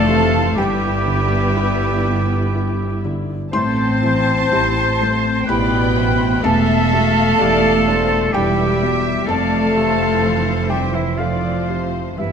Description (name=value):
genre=cinematic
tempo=62 BPM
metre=3/4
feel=rubato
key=unclear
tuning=A4 = 440 Hz
part: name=muted studio violin section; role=melody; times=0.0-12.3 s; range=A4 to E5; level=-28 LUFS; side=left 5 dB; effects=none
part: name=bright small flute group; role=second line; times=0.0-12.3 s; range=E5 to C6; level=-25 LUFS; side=right 5 dB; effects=none
part: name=muted studio violin section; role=second line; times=0.0-12.3 s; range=B4 to A5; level=-27 LUFS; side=left 3 dB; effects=none
part: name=warm clarinet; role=second line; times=0.0-12.3 s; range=E4 to C5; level=-26 LUFS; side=left 1 dB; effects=none
part: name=warm oboe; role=second line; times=0.0-12.3 s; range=E4 to C5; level=-24 LUFS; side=right 1 dB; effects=none
part: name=felt-muted upright piano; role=accompaniment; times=0.0-12.3 s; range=E2 to C6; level=-23 LUFS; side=left 3 dB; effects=none
part: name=muted studio viola section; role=accompaniment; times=0.0-12.3 s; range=D3 to E4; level=-30 LUFS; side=right 2 dB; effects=none
part: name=mellow French horn section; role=sustained chords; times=0.0-12.3 s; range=B2 to C4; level=-24 LUFS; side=left 4 dB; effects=none
part: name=muted studio cello section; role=bass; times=0.0-12.3 s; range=E3 to C4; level=-24 LUFS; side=right 2 dB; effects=none
part: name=muted studio double bass section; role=bass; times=0.0-12.3 s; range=E1 to A1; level=-21 LUFS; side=right 3 dB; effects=none
room=moderate scoring stage reverb, RT60 2.0 s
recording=none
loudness=-15 LUFS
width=side -7 dB against mid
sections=0.0-12.3 A section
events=none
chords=0.0 Fmaj7; 0.6 G6; 3.5 Am7; 6.4 Em7; 9.3 Fmaj7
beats=| 0.57 1.56 2.55 | 3.52 4.50 5.47 | 6.43 7.38 8.33 | 9.27 10.22 11.19 | 12.18